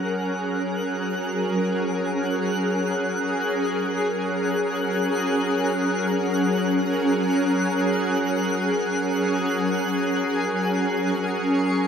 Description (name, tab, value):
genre	ambient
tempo	free time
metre	none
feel	none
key	F# major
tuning	A4 = 441 Hz
part	shimmering ambient pad	sustained chords	0.0-11.9 s	F#3 to A#4	-22 LUFS	equal	chorus, built-in reverb
part	twinkling granular texture	texture	0.0-11.9 s	C#6 to F#6	-31 LUFS	equal	built-in reverb
room	wet lush hall reverb, RT60 2.6 s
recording	dreamy mix soaked in reverb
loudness	-21 LUFS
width	side -7 dB against mid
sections	0.0-11.9 A section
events	none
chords	0.0 F#